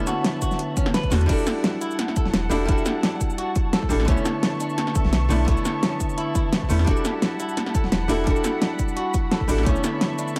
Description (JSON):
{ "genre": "liquid drum and bass", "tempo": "172 BPM", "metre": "4/4", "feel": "swing 53% on 16ths", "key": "E minor", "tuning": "A4 = 440 Hz", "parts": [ { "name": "archtop guitar, miked and amplified", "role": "accompaniment", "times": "0.0-10.4 s", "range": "D3 to C#5", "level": "-28 LUFS", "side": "equal", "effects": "delay" }, { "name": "muted studio string section", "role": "sustained chords", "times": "0.0-10.4 s", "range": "C#5 to C#6", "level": "-35 LUFS", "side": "equal", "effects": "sidechain pumping" }, { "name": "clean electric guitar", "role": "arpeggios", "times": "0.1-10.3 s", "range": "C#4 to B4", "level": "-34 LUFS", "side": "equal", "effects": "digital delay" }, { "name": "pop drum kit", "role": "drums", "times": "0.1-10.4 s", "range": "crash cymbal, hi-hat, shaker, snare drum", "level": "-28 LUFS", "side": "equal", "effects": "overdrive" }, { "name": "electronic kick drum", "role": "drums", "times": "0.4-9.7 s", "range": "none", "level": "-26 LUFS", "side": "equal", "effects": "overdrive" }, { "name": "warm sub bass", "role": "bass", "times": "1.1-9.7 s", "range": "E1 to E2", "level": "-25 LUFS", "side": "equal", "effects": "none" } ], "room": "light reverb", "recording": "none", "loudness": "-22 LUFS", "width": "mono", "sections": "0.0-1.3 A section; 1.3-10.4 A section", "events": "drop 0.0-1.3, 1.3-10.4", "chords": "0.0 Bm11; 1.3 Em11; 4.1 Bm11; 6.9 Em11; 9.7 Bm11" }